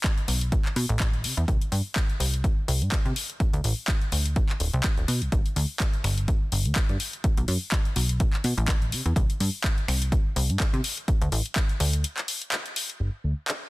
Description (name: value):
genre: filtered disco house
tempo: 125 BPM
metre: 4/4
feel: swing 56% on 16ths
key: G major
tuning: A4 = 442 Hz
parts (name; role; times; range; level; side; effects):
- electronic kick drum; drums; 0.0-11.7 s; none; -24 LUFS; equal; studio reverb
- house drum kit; drums; 0.0-13.6 s; finger snaps, handclaps, hi-hat; -30 LUFS; left 2 dB; overdrive, sidechain pumping on hats, studio reverb
- plucky analog bass; bass; 0.3-13.3 s; D1 to C3; -25 LUFS; equal; sidechain pumping, low-pass filter
room: digital ambience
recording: dense, heavily limited modern master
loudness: -23 LUFS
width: side -20 dB against mid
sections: 0.0-13.0 A section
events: break 12.0-13.0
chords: none